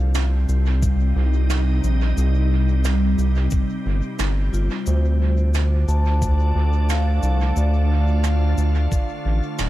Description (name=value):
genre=ambient dub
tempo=89 BPM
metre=4/4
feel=swing 53% on 16ths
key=C dorian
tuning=A4 = 440 Hz
part: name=soft additive organ-like pad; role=sustained chords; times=0.0-9.7 s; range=C3 to F4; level=-26 LUFS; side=equal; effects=ensemble chorus, built-in reverb
part: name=round analog bass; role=bass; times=0.0-9.7 s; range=D1 to D2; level=-18 LUFS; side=equal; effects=none
part: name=cabasa and snare drum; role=drums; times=0.1-9.7 s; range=none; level=-31 LUFS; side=right 3 dB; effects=dub echo
part: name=electronic kick drum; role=drums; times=0.8-9.1 s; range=none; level=-22 LUFS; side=equal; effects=none
part: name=vibraphone with medium mallets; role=arpeggios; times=4.5-9.7 s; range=F4 to A5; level=-32 LUFS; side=left 1 dB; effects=dub echo
room=small room ambience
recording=echo-heavy mix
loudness=-17 LUFS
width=side -15 dB against mid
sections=0.0-9.7 A section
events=none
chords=0.0 Cm7; 4.9 Dm7